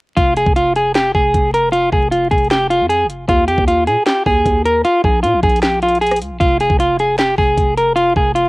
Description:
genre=hip hop, trap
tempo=154 BPM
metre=4/4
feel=half-time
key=F minor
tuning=A4 = 441 Hz
part: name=clean electric guitar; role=melody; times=0.2-8.5 s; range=F4 to Bb4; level=-13 LUFS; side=equal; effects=low-pass filter, cassette tape
part: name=growling 808-style bass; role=bass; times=0.2-8.5 s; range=F1 to Bb2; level=-22 LUFS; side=equal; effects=none
part: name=trap drum kit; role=drums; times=0.2-8.4 s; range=handclaps, hi-hat, kick drum, rim click, snare drum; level=-18 LUFS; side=equal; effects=cassette tape
room=light reverb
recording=home recording on cassette, vinyl crackle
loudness=-12 LUFS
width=side -23 dB against mid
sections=0.2-8.5 A section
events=none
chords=0.2 Fm; 3.3 Ebsus2; 4.8 Bb5; 6.4 Fm

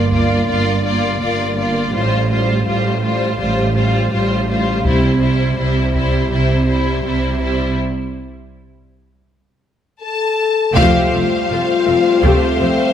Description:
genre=cinematic, epic orchestral film score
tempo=82 BPM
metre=4/4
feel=straight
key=unclear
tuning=A4 = 440 Hz
part: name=warm symphonic violin section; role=melody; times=0.0-12.9 s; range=C5 to A5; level=-24 LUFS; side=left 4 dB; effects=none
part: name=rich symphonic violin section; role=second line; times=0.0-12.9 s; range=E4 to F5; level=-22 LUFS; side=left 2 dB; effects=none
part: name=warm symphonic viola section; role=accompaniment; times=0.0-12.7 s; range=G3 to G4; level=-22 LUFS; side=left 1 dB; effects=none
part: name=warm symphonic cello section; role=bass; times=0.0-12.7 s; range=F2 to C3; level=-21 LUFS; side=right 2 dB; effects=none
part: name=warm symphonic double bass section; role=bass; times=0.0-12.7 s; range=F1 to C2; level=-21 LUFS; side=right 2 dB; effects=none
part: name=solo taiko drums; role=drums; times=0.1-0.5, 4.8-6.3, 10.8-12.9 s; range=none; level=-20 LUFS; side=equal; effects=none
part: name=mellow French horn section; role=sustained chords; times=10.0-12.9 s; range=C4 to A4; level=-17 LUFS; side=left 5 dB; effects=none
part: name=rich symphonic string section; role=sustained chords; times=10.8-12.9 s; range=A3 to F5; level=-24 LUFS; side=equal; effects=none
part: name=warm trombone section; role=sustained chords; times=10.8-12.9 s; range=G3 to A3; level=-24 LUFS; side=right 3 dB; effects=none
room=moderate scoring stage reverb, RT60 1.7 s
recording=none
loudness=-14 LUFS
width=side -9 dB against mid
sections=0.0-10.8 A section; 10.8-12.9 B section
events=build-up 0.0-10.8; break 7.8-10.8; band accent 10.8-11.5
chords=0.0 Gm7; 1.9 Fadd9/A; 4.9 C; 7.8 N.C.; 10.8 Fadd9

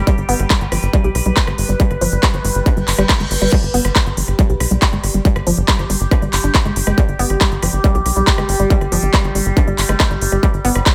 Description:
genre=psychedelic trance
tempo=139 BPM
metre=4/4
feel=straight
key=G major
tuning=A4 = 439 Hz
part: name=overtone-sweeping drone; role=sustained chords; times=0.0-10.9 s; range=G3 to C5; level=-26 LUFS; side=equal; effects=chorus, built-in reverb, sidechain pumping
part: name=tight sequencer bass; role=bass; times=0.0-10.8 s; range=G1 to B1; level=-21 LUFS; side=equal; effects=none
part: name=woody wave-folded pluck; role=riff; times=0.1-10.9 s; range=F3 to G4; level=-24 LUFS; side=equal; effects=chorus, sidechain pumping, digital delay
part: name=big-room dance drum kit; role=drums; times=0.1-10.9 s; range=crash cymbal, handclaps, hi-hat, rim click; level=-22 LUFS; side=equal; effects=overdrive
part: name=electronic kick drum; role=drums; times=0.1-10.9 s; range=none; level=-18 LUFS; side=equal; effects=distortion
part: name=reverse cymbal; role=sound effects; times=2.8-3.5 s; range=none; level=-30 LUFS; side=equal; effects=none
room=digital ambience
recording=none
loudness=-16 LUFS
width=mono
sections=0.0-10.9 A section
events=filter sweep on synth arpeggio sound 0.0-10.9; reverse cymbal 2.8-3.5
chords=0.0 G5

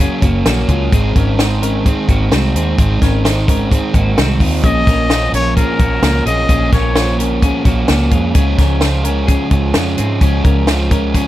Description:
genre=jangly indie pop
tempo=129 BPM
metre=4/4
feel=straight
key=Ab mixolydian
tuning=A4 = 442 Hz
part: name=crunchy overdriven guitar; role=accompaniment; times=0.0-11.3 s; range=Gb2 to Eb4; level=-18 LUFS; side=right 4 dB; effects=spring reverb
part: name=twelve-string electric guitar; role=arpeggios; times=0.0-11.3 s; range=Ab3 to C5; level=-22 LUFS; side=left 7 dB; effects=none
part: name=vintage muted fingered electric bass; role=bass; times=0.0-11.2 s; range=Gb1 to Ab2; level=-16 LUFS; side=equal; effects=none
part: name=compact cocktail drum kit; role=drums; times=0.2-11.3 s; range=hi-hat, kick drum, snare drum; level=-15 LUFS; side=equal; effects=none
part: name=bright trumpet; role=melody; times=4.6-7.2 s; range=Bb4 to Eb5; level=-19 LUFS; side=left 2 dB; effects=none
room=little or no reverb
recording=none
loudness=-11 LUFS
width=side -14 dB against mid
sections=0.0-11.3 A section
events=none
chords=0.0 Gb; 0.9 Ab; 4.6 Bbm; 8.4 Db

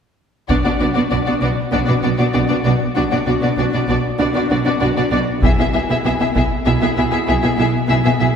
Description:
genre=cinematic, epic orchestral film score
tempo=97 BPM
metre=4/4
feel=straight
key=unclear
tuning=A4 = 441 Hz
part: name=warm symphonic violin section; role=second line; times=0.5-8.3 s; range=F#4 to E5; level=-20 LUFS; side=left 4 dB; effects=none
part: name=warm symphonic viola section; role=accompaniment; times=0.5-8.3 s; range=B3 to E4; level=-19 LUFS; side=right 1 dB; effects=none
part: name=rich symphonic cello section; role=bass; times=0.5-8.3 s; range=B2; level=-22 LUFS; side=right 1 dB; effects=none
part: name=warm symphonic double bass section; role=bass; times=0.5-8.3 s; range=B1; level=-22 LUFS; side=right 3 dB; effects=none
part: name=taiko ensemble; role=drums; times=0.5-1.7, 5.4-6.6 s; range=none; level=-20 LUFS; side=left 1 dB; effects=none
room=wet scoring stage reverb, RT60 2.0 s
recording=recorded in a church or concert hall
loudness=-15 LUFS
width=side -7 dB against mid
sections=0.5-8.4 A section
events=none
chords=0.5 Bm; 5.4 E/B

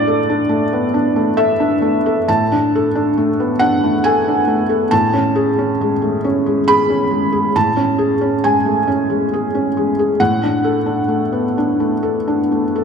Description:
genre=neoclassical minimalist piano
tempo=68 BPM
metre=3/4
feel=rubato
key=unclear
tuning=A4 = 440 Hz
part: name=felt-muted upright piano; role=solo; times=0.0-12.8 s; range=A2 to B5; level=-14 LUFS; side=equal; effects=none
room=wet concert hall reverb, RT60 2.2 s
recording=none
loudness=-14 LUFS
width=side -6 dB against mid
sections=0.0-12.8 A section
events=none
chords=0.0 Dsus2/A; 4.9 Amaj7; 10.2 D5/A

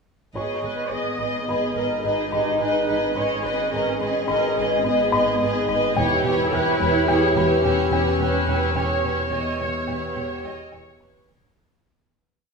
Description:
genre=cinematic, suspense film score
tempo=107 BPM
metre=5/4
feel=straight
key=G# harmonic minor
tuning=A4 = 437 Hz
part: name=warm studio violin section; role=second line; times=0.3-11.6 s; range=G4 to D#5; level=-28 LUFS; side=right 4 dB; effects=none
part: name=mellow French horn section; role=sustained chords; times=0.3-11.2 s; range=G4 to D#5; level=-27 LUFS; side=left 3 dB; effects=none
part: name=dark studio double bass section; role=bass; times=0.3-11.4 s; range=E1 to G#1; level=-31 LUFS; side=right 4 dB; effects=none
part: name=rich studio violin section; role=melody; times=0.4-11.6 s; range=C#5 to D#5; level=-27 LUFS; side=left 2 dB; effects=none
part: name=warm chamber viola section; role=accompaniment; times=0.4-11.3 s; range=G4 to D#5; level=-29 LUFS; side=right 2 dB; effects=none
part: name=buzzing marimba with hard mallets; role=riff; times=0.4-11.5 s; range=E2 to G#2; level=-30 LUFS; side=left 4 dB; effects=none
part: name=dark chamber cello section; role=bass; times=0.4-11.3 s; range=B3 to E4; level=-28 LUFS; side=right 2 dB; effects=none
part: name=bowed-like drone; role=drone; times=1.3-11.5 s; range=G#1 to E2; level=-31 LUFS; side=left 1 dB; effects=built-in reverb
part: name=felt-muted upright piano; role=texture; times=0.4-11.6 s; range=B4 to C#6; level=-36 LUFS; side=equal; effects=none
part: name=rich studio violin section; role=texture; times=6.0-11.3 s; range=E6 to E#6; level=-37 LUFS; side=equal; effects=none
room=wet scoring stage reverb, RT60 1.8 s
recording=studio ambience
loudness=-19 LUFS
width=side -4 dB against mid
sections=0.4-11.6 A section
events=fade-out 8.8-11.6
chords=0.4 G#m; 6.0 Em6

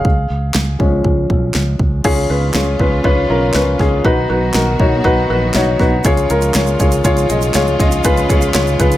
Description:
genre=piano-driven pop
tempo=120 BPM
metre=4/4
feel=straight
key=unclear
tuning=A4 = 443 Hz
part: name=felt-muted upright piano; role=accompaniment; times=0.0-9.0 s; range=B2 to F5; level=-15 LUFS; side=left 2 dB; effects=none
part: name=fingered electric bass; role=bass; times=0.0-9.0 s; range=Bb1 to Db2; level=-18 LUFS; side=equal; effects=none
part: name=pop drum kit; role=drums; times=0.0-9.0 s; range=crash cymbal, handclaps, hi-hat, kick drum, snare drum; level=-17 LUFS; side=equal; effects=none
part: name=warm studio string section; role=sustained chords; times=2.0-9.0 s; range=Db3 to F#4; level=-23 LUFS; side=right 2 dB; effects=none
part: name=egg shaker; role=percussion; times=6.0-9.0 s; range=none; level=-30 LUFS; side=right 13 dB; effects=none
room=moderate large studio reverb, RT60 1.0 s, small room reverb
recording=none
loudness=-12 LUFS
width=side -14 dB against mid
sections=0.0-2.0 A section; 2.0-9.0 B section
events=felt piano solo 0.0-2.0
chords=0.0 Db; 4.0 B; 6.0 Db

